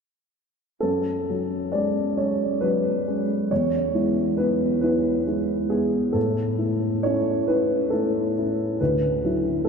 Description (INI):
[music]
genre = neoclassical minimalist piano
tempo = 45 BPM (dotted quarters)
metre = 6/8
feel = rubato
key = unclear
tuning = A4 = 440 Hz
[part]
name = dark upright piano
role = solo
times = 0.8-9.7 s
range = D2 to D5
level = -21 LUFS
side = equal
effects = none
[sound]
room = wet cathedral reverb, RT60 5.9 s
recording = in a vast, echoing space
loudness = -21 LUFS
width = side -5 dB against mid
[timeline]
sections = 0.8-9.7 A section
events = none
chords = 0.8 F#madd9; 3.5 E; 6.2 A; 8.8 Dadd9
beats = | 0.82 2.16 | 3.50 4.83 | 6.16 7.48 | 8.80